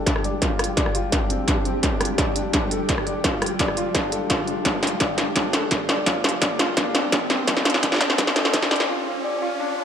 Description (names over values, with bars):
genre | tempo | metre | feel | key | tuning
half-time drum and bass | 170 BPM | 4/4 | half-time | D minor | A4 = 440 Hz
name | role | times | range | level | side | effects
felt-muted upright piano | arpeggios | 0.0-9.8 s | C4 to D5 | -26 LUFS | left 2 dB | low-pass filter, digital delay
riser | sound effects | 4.1-9.8 s | none | -34 LUFS | right 1 dB | none
flickering grainy texture | texture | 0.0-8.9 s | G3 to G4 | -31 LUFS | equal | built-in reverb
electronic kick drum | drums | 0.1-8.6 s | none | -27 LUFS | equal | distortion
industrial drum kit | drums | 0.1-8.9 s | hi-hat, rim click, snare drum | -22 LUFS | equal | none
room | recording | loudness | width
moderate lush hall reverb, RT60 1.6 s | high-pass filter | -19 LUFS | side -8 dB against mid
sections
0.0-9.8 A section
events
build-up 0.0-9.8; drum fill 0.0-8.9; filter sweep on felt piano 0.0-9.8; filter sweep 0.0-9.8; riser 4.1-9.8; break 8.9-9.8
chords
0.0 Dm